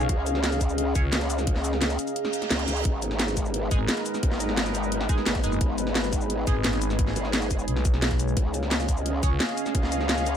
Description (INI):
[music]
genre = dark technical drum and bass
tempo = 174 BPM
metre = 4/4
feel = straight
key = G# dorian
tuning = A4 = 440 Hz
[part]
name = sweeping resonant pad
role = sustained chords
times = 0.0-10.4 s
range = G#3 to E#5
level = -31 LUFS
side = left 1 dB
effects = chorus, sidechain pumping
[part]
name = band-passed chord stab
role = stabs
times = 0.0-1.0, 3.7-6.5, 9.2-9.3 s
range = G#3 to C#5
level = -36 LUFS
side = right 2 dB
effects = phaser, analog chorus, ping-pong delay
[part]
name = growling FM bass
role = bass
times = 0.0-1.1, 3.7-9.4 s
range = F#1 to C#2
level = -27 LUFS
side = equal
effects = none
[part]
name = drum and bass drum kit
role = drums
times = 0.0-10.3 s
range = hi-hat, shaker, snare drum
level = -28 LUFS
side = equal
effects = none
[part]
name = warbly tape-like pad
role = texture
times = 0.0-10.4 s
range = B3 to A#5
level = -32 LUFS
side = right 1 dB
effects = chorus, built-in reverb, sidechain pumping
[part]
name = growl bass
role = bass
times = 0.1-10.4 s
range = G#1 to C#2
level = -29 LUFS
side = equal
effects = chorus, overdrive, sidechain pumping
[part]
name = electronic kick drum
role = drums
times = 0.1-9.8 s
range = none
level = -25 LUFS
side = equal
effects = none
[part]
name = reverse cymbal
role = sound effects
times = 2.3-2.9 s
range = none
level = -35 LUFS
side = right 6 dB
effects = none
[sound]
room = digital ambience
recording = none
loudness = -23 LUFS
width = side -9 dB against mid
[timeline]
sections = 0.0-10.4 A section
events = kick drops out 2.2-2.9; reverse cymbal 2.3-2.9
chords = 0.0 C#; 2.9 G#madd9; 8.4 C#